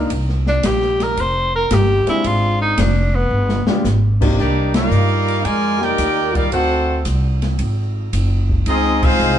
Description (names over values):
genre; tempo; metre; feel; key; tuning
jazz, big band swing; 112 BPM; 4/4; swing 68% on 8ths; C minor; A4 = 439 Hz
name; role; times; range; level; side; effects
warm concert grand piano; accompaniment; 0.0-4.4 s; C3 to Ab4; -23 LUFS; left 3 dB; none
upright bass; bass; 0.0-9.4 s; F1 to G2; -18 LUFS; equal; none
open jazz drum kit; drums; 0.1-9.4 s; crash cymbal, hi-hat, kick drum, ride cymbal, snare drum; -23 LUFS; equal; none
warm tenor saxophone; melody; 0.5-3.7 s; B3 to C5; -18 LUFS; equal; none
bright trumpet section; melody; 4.4-9.4 s; Bb3 to Ab5; -19 LUFS; equal; none
warm trombone section; second line; 4.4-9.4 s; G3 to G4; -21 LUFS; left 1 dB; none
room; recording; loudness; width
moderate stone room reverb, RT60 1.4 s; band playing live in one room, nothing above 10.8 kHz; -15 LUFS; side -10 dB against mid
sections
0.0-4.4 A section; 4.4-9.4 B section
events
tenor saxophone solo 0.0-4.4; drum fill 3.3-3.8; band accent 4.6, 8.9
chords
0.1 C7sus4; 2.2 Dm7b5; 3.3 G7b9; 4.4 Cm11; 6.5 D7#11; 8.7 Dbmaj9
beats
| 0.10 0.64 1.17 1.71 | 2.24 2.78 3.31 3.85 | 4.38 4.92 5.45 5.99 | 6.52 7.06 7.59 8.13 | 8.66 9.20